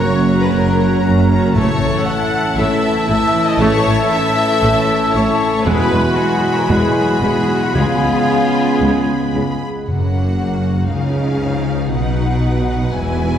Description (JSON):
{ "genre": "cinematic", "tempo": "117 BPM", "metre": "4/4", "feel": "straight", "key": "F# major from 9.9 s", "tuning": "A4 = 440 Hz", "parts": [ { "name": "rich studio violin section", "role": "melody", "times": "0.0-13.4 s", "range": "E#5 to B5", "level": "-26 LUFS", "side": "left 2 dB", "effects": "none" }, { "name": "clear oboe", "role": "second line", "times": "0.0-9.6 s", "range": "E5 to G#5", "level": "-26 LUFS", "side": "left 1 dB", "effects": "none" }, { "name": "clear symphonic violin section", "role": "second line", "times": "0.0-13.4 s", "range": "E#4 to F#5", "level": "-24 LUFS", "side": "left 2 dB", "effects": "none" }, { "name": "mellow hollow silver concert flute", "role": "second line", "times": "0.0-9.6 s", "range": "E#5 to F#6", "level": "-24 LUFS", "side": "left 1 dB", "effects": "none" }, { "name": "warm clarinet", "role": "second line", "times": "0.0-9.6 s", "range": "G#3 to B3", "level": "-24 LUFS", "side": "left 1 dB", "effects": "none" }, { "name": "clear symphonic viola section", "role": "accompaniment", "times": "0.0-13.4 s", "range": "G#3 to G#4", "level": "-24 LUFS", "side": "right 1 dB", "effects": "none" }, { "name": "mellow French horn section", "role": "sustained chords", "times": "0.0-13.4 s", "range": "F#3 to E4", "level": "-23 LUFS", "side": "left 2 dB", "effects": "none" }, { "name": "mellow trombone section", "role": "sustained chords", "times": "0.0-13.4 s", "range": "F#2 to G#3", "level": "-25 LUFS", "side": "right 2 dB", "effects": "none" }, { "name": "concert harp", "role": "arpeggios", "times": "0.0-13.4 s", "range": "E2 to G#5", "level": "-24 LUFS", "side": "left 3 dB", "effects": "none" }, { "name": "warm trumpet section", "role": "stabs", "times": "0.0-9.6 s", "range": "G#4 to C#5", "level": "-23 LUFS", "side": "left 1 dB", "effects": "none" }, { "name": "clear chamber double bass section", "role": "bass", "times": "0.0-13.4 s", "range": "E1 to C#2", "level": "-22 LUFS", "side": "right 2 dB", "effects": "none" }, { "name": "rich symphonic cello section", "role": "bass", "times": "0.0-13.4 s", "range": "C#2 to C#3", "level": "-20 LUFS", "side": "right 1 dB", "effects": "none" }, { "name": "timpani", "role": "percussion", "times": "9.9-10.6 s", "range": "F#2", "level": "-26 LUFS", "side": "equal", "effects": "none" } ], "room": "wet scoring stage reverb, RT60 2.0 s", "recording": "heard from further back in the room", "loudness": "-13 LUFS", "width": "side -9 dB against mid", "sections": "0.0-9.9 A section; 9.9-13.4 B section", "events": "none", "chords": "0.0 F#; 1.6 A; 5.7 Eadd9; 7.8 C#7; 9.9 F#; 10.9 C#add9; 11.9 B" }